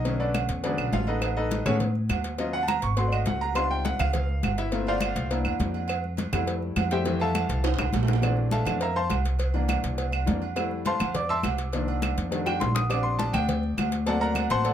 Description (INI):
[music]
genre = Afro-Cuban jazz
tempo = 206 BPM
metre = 4/4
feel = straight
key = F major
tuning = A4 = 439 Hz
[part]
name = clear grand piano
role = accompaniment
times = 0.0-14.7 s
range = D3 to E6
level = -28 LUFS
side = left 2 dB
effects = none
[part]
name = upright bass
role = bass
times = 0.0-14.7 s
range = G1 to A2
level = -28 LUFS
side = equal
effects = none
[part]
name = agogo bells and timbales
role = percussion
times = 0.1-14.7 s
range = none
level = -33 LUFS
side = right 10 dB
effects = none
[part]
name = congas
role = percussion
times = 0.1-14.7 s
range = none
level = -34 LUFS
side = left 2 dB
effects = none
[part]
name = cowbell and bongos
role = percussion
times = 0.1-14.7 s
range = none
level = -35 LUFS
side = left 2 dB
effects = none
[part]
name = claves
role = percussion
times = 0.3-14.5 s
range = none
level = -33 LUFS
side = right 4 dB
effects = none
[sound]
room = light reverb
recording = none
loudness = -24 LUFS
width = side -10 dB against mid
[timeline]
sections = 0.0-8.2 A section; 8.2-14.7 A section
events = grand piano solo 0.0-14.7; drum fill 7.6-8.2, 12.5-12.9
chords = 0.1 Bm7; 0.6 E13; 1.2 Amaj9#11; 2.4 Ebm9; 3.0 Ab7b9; 3.6 Dbmaj9#11; 4.7 Gm11; 5.3 C9; 5.9 Fmaj9; 8.2 Bbmaj9#11; 9.4 C7; 10.6 Fmaj7; 11.7 Cm11; 12.3 F13; 12.9 Bb6; 14.1 D7b13